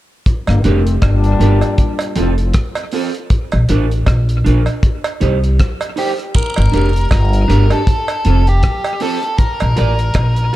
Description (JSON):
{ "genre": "roots reggae", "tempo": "79 BPM", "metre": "4/4", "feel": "swing 57% on 16ths", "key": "G minor", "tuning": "A4 = 442 Hz", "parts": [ { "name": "cloth-damped thuddy drum kit", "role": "drums", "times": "0.3-10.6 s", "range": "hi-hat, kick drum, rim click", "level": "-17 LUFS", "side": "equal", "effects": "none" }, { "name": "mellow trombone section", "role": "second line", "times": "0.5-2.3 s", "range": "G2 to D4", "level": "-20 LUFS", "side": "left 4 dB", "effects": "tape echo" }, { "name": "upright bass", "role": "bass", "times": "0.5-10.5 s", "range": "F1 to C2", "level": "-13 LUFS", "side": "equal", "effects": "none" }, { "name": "cowbell and jawbone-type rattle", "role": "percussion", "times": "0.5-10.4 s", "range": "none", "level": "-26 LUFS", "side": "right 4 dB", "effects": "none" }, { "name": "electric guitar at the edge of break-up", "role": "accompaniment", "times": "0.6-10.6 s", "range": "C4 to D5", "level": "-21 LUFS", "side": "right 4 dB", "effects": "tape echo" }, { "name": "octave-fuzz lead guitar", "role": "melody", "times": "6.0-10.6 s", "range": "G4 to Bb4", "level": "-20 LUFS", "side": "left 1 dB", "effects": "distortion, tape echo" } ], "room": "small room ambience", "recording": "dark, warm production", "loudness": "-12 LUFS", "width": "side -15 dB against mid", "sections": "0.3-6.3 A section; 6.3-10.6 B section", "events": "none", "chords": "0.3 Gm; 1.8 F; 3.3 Bb; 4.8 Cm; 6.3 Gm; 7.9 F; 9.4 Bb" }